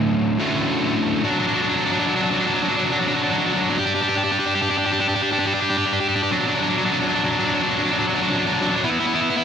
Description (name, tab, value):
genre	rock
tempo	47 BPM (dotted quarters)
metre	6/8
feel	straight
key	unclear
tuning	A4 = 439 Hz
part	distorted electric guitar	solo	0.0-9.4 s	D2 to G4	-18 LUFS	equal	distortion, tape echo
room	moderate recital hall reverb, RT60 1.7 s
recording	none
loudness	-18 LUFS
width	side -8 dB against mid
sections	0.0-1.2 A section; 1.2-9.4 B section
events	build-up 1.2-9.4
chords	0.0 Dmaj7; 1.2 D/F#; 3.8 G5; 6.3 D/F#; 8.8 E5